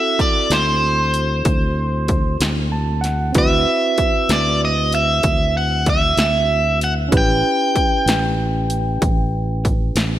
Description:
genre	slow blues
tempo	64 BPM (dotted quarters)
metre	12/8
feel	straight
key	unclear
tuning	A4 = 443 Hz
part	overdriven electric guitar	melody	0.0-9.6 s	C5 to G5	-19 LUFS	equal	none
part	barky tine electric piano	accompaniment	0.0-10.2 s	C4 to A5	-24 LUFS	right 3 dB	medium stereo tremolo
part	techno drum kit	drums	0.2-10.1 s	hi-hat, kick drum, snare drum	-20 LUFS	equal	overdrive
part	fingered electric bass	bass	0.5-10.2 s	A1 to D2	-21 LUFS	equal	none
room	light reverb, digital ambience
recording	none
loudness	-15 LUFS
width	side -12 dB against mid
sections	0.0-10.2 A section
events	tine electric piano fill 2.4-3.3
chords	0.0 D7; 7.1 A7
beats	0.51 1.45 2.40 | 3.35 4.29 5.24 6.18 | 7.13 8.07 9.02 9.96

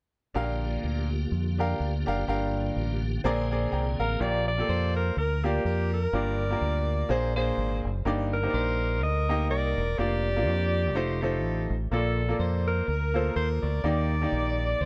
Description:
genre	uptempo gospel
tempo	125 BPM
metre	4/4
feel	swing 56% on 8ths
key	Bb major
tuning	A4 = 440 Hz
part	bright upright piano	accompaniment	0.3-14.8 s	G2 to Bb5	-33 LUFS	equal	none
part	tonewheel organ	sustained chords	0.4-4.2 s	D3 to Ab4	-38 LUFS	equal	fast rotary speaker, overdrive, chorus vibrato
part	deep dub fingered electric bass	bass	0.4-14.9 s	E1 to F2	-31 LUFS	equal	none
part	bright alto saxophone	melody	4.0-14.9 s	G4 to Eb5	-34 LUFS	equal	none
part	mellow soprano saxophone	melody	4.7-14.9 s	A4 to D5	-36 LUFS	equal	none
room	studio reverb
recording	dark, warm production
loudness	-27 LUFS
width	mono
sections	0.4-4.2 A section; 4.2-14.9 B section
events	upright piano fill 3.5-4.2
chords	0.4 Bb6; 2.3 Gm7; 3.2 Bb9; 4.2 Bb6; 6.1 Gm7; 7.1 Bb9; 8.1 Ebmaj7/G; 10.0 Bb/F; 10.9 F7; 11.9 Bbmaj7; 13.8 Ebmaj7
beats	| 0.35 0.83 1.32 1.80 | 2.28 2.76 3.24 3.73 | 4.21 4.69 5.17 5.65 | 6.13 6.61 7.10 7.58 | 8.06 8.54 9.02 9.50 | 9.99 10.47 10.95 11.43 | 11.91 12.40 12.88 13.36 | 13.84 14.33 14.81

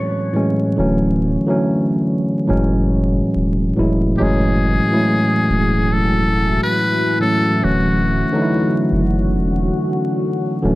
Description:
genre	lo-fi hip hop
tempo	70 BPM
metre	4/4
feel	swing 63% on 16ths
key	F# minor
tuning	A4 = 440 Hz
part	mellow electric guitar	second line	0.0-0.7 s	C#5	-28 LUFS	right 2 dB	spring reverb, low-pass filter, plate reverb, analog delay
part	tine electric piano	accompaniment	0.0-10.8 s	A2 to E4	-16 LUFS	equal	medium stereo tremolo, cassette tape, low-pass filter
part	soft dub sub bass	bass	0.8-10.8 s	D1 to F#1	-20 LUFS	equal	none
part	trumpet with metal mute	melody	4.2-8.9 s	F#4 to B4	-20 LUFS	left 2 dB	low-pass filter
part	deep dark ambient pad	sustained chords	5.4-10.8 s	D3 to G#5	-24 LUFS	left 2 dB	chorus, built-in reverb, low-pass filter
room	light reverb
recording	dry, gritty hardware recording, vinyl crackle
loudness	-15 LUFS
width	side -18 dB against mid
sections	0.0-4.2 A section; 4.2-10.8 B section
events	none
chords	0.0 F#m9; 0.8 Dmaj7; 2.5 F#m9; 7.6 Dmaj7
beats	| 0.78 1.64 2.49 3.35 | 4.21 5.06 5.92 6.78 | 7.63 8.49 9.35 10.21

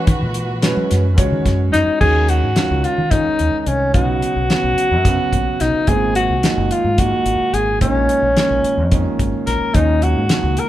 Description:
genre	electric jazz fusion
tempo	217 BPM (eighths)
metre	7/8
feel	straight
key	Eb minor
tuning	A4 = 441 Hz
part	warm concert grand piano	accompaniment	0.0-10.7 s	Bb2 to Db5	-22 LUFS	right 3 dB	none
part	warm chamber string section	sustained chords	0.0-2.0 s	Fb3 to Cb5	-27 LUFS	equal	none
part	deep dub fingered electric bass	bass	0.1-10.6 s	Gb1 to Gb3	-20 LUFS	equal	none
part	damped 70s drum kit	drums	0.1-10.7 s	crash cymbal, hi-hat, kick drum, snare drum	-19 LUFS	equal	none
part	breathy alto saxophone	melody	1.7-10.7 s	Db4 to Bb4	-17 LUFS	left 1 dB	none
room	moderate large studio reverb, RT60 1.3 s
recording	band playing live in one room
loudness	-14 LUFS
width	side -13 dB against mid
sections	0.0-2.0 A section; 2.0-10.7 B section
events	none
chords	0.0 Gb9sus4; 2.0 Ebm7; 3.9 B; 5.9 Ab7; 7.8 Bbm7; 9.7 Ebm7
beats	| 0.08 0.35 0.63 0.91 1.18 1.46 1.74 | 2.01 2.29 2.56 2.84 3.12 3.39 3.67 | 3.95 4.22 4.50 4.78 5.05 5.33 5.61 | 5.88 6.16 6.43 6.71 6.99 7.26 7.54 | 7.81 8.09 8.37 8.64 8.92 9.19 9.47 | 9.75 10.02 10.30 10.57

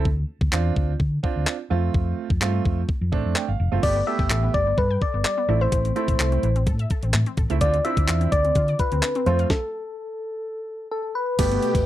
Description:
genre	dance-pop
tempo	127 BPM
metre	4/4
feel	straight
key	unclear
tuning	A4 = 440 Hz
part	warm grand piano	accompaniment	0.0-11.8 s	A3 to G5	-28 LUFS	right 10 dB	none
part	hollow-body short-scale fingered electric bass	bass	0.0-11.8 s	F1 to D3	-23 LUFS	equal	sidechain pumping
part	crisp 8-bit digital drum machine	drums	0.1-11.9 s	crash cymbal, handclaps, hi-hat, kick drum, snare drum	-24 LUFS	equal	none
part	soft struck synth lead	melody	3.8-11.9 s	A4 to E5	-24 LUFS	left 2 dB	chorus, slapback echo
part	wide unison pluck	arpeggios	3.8-11.8 s	D3 to G5	-34 LUFS	left 7 dB	sidechain pumping, slapback echo
part	lush unison pad	sustained chords	11.4-11.9 s	B2 to G4	-30 LUFS	left 3 dB	chorus, sidechain pumping
part	tambourine	percussion	11.4-11.9 s	none	-44 LUFS	left 10 dB	none
room	light reverb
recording	dry, close 1970s-style studio recording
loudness	-20 LUFS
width	side -13 dB against mid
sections	0.0-3.8 A section; 3.8-11.4 B section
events	grand piano fill 3.1-3.8; stop 9.5-11.4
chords	0.1 Dm7; 1.7 F; 3.8 Gadd9; 5.5 Am; 7.6 Dm7; 9.3 F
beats	| 0.05 0.52 1.00 1.47 | 1.94 2.41 2.89 3.36 | 3.83 4.30 4.78 5.25 | 5.72 6.19 6.67 7.14 | 7.61 8.08 8.56 9.03 | 9.50 9.97 10.45 10.92 | 11.39

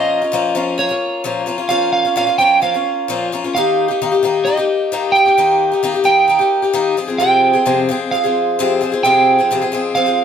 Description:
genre	rock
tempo	131 BPM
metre	4/4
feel	straight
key	F minor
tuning	A4 = 440 Hz
part	electric slide guitar	melody	0.0-10.2 s	Db5 to G5	-15 LUFS	right 4 dB	none
part	picked swing-style acoustic guitar	accompaniment	0.0-10.2 s	F2 to Ab4	-17 LUFS	left 6 dB	none
room	moderate stone room reverb, RT60 0.9 s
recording	band playing live in one room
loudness	-13 LUFS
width	side -8 dB against mid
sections	0.0-10.2 A section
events	none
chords	0.0 Bbm; 3.5 Eb; 7.0 Fm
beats	0.33 0.79 1.25 | 1.71 2.16 2.62 3.08 | 3.54 4.00 4.45 4.91 | 5.37 5.83 6.29 6.74 | 7.20 7.66 8.12 8.58 | 9.04 9.49 9.95

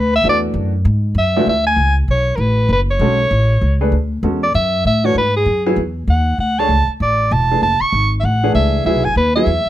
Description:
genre	modal jazz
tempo	195 BPM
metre	4/4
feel	swing 61% on 8ths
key	D lydian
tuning	A4 = 440 Hz
part	clear soprano saxophone	melody	0.0-9.7 s	G#4 to C#6	-16 LUFS	right 1 dB	none
part	upright bass	bass	0.0-9.7 s	E1 to A2	-16 LUFS	equal	none
part	clear baby grand piano	accompaniment	0.2-9.5 s	C#2 to C#5	-19 LUFS	equal	none
room	little or no reverb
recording	close, detailed microphones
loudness	-13 LUFS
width	side -13 dB against mid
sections	0.0-1.5 A section; 1.5-9.7 B section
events	soprano saxophone solo 0.0-1.5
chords	0.0 Eadd9; 1.5 Dmaj7; 3.9 Eadd9/D; 6.4 Dmaj9; 8.9 Eadd9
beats	| 0.25 0.55 0.86 1.17 | 1.47 1.78 2.09 2.40 | 2.70 3.01 3.32 3.62 | 3.93 4.24 4.55 4.86 | 5.16 5.47 5.78 6.09 | 6.39 6.70 7.01 7.32 | 7.62 7.93 8.24 8.55 | 8.86 9.16 9.47

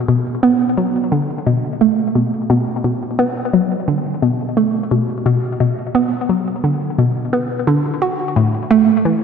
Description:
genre	ambient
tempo	87 BPM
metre	4/4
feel	straight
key	B minor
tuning	A4 = 440 Hz
part	hollow square pluck	solo	0.1-9.2 s	A2 to F#4	-14 LUFS	right 1 dB	chorus, phaser, ping-pong delay
room	wet lush hall reverb, RT60 2.8 s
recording	dreamy mix soaked in reverb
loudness	-14 LUFS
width	side -6 dB against mid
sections	0.0-9.2 A section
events	none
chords	none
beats	| 0.09 0.78 1.47 2.15 | 2.84 3.53 4.22 4.91 | 5.60 6.29 6.98 7.67 | 8.36 9.05

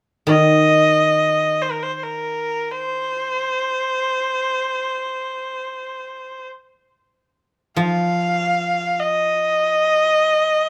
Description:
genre	chinese traditional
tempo	free time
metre	none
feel	none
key	unclear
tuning	A4 = 440 Hz
part	rich erhu	melody	0.3-10.7 s	Bb4 to F5	-20 LUFS	equal	none
part	guzheng	accompaniment	0.3-10.7 s	Eb3 to F3	-23 LUFS	equal	none
room	light reverb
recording	close, detailed microphones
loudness	-19 LUFS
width	mono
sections	0.0-10.7 A section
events	none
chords	none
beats	free time

